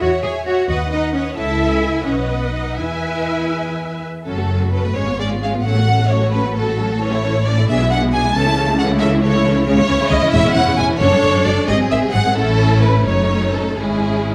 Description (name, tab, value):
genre	quick classical-period movement for string orchestra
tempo	80-92 BPM (dotted quarters)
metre	6/8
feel	rubato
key	E major, F# minor from 4.3 s, C# minor from 9.7 s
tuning	A4 = 439 Hz
part	warm symphonic violin section	melody	0.0-14.3 s	D#4 to A5	-28 LUFS	equal	none
part	warm symphonic violin section	second line	0.0-14.3 s	G#4 to A5	-23 LUFS	equal	none
part	warm symphonic viola section	accompaniment	0.0-14.3 s	B#2 to E5	-25 LUFS	equal	none
part	warm studio double bass section	bass	0.0-14.3 s	E1 to E2	-22 LUFS	equal	none
part	warm symphonic cello section	bass	0.0-14.3 s	E2 to G#4	-23 LUFS	equal	none
room	moderate recital hall reverb, RT60 1.3 s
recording	none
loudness	-17 LUFS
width	mono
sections	0.0-4.3 A section; 4.3-14.3 B section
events	none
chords	0.0 C#m/E; 0.7 B/D#; 1.4 A/C#; 2.1 B; 2.8 E; 4.3 F#m; 5.0 C#7/G#; 5.7 F#m/A; 7.0 A; 7.7 E7/B; 8.4 A/C#; 9.7 C#m; 10.3 C#m/E; 11.0 D/F#; 11.7 G#7; 12.4 A; 13.1 D#m7b5/F#; 13.8 C#m/G#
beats	| 0.02 0.69 | 1.37 2.05 | 2.78 3.52 | 4.26 4.96 | 5.65 6.34 | 7.02 7.69 | 8.36 9.01 | 9.68 10.34 | 11.01 11.69 | 12.37 13.07 | 13.79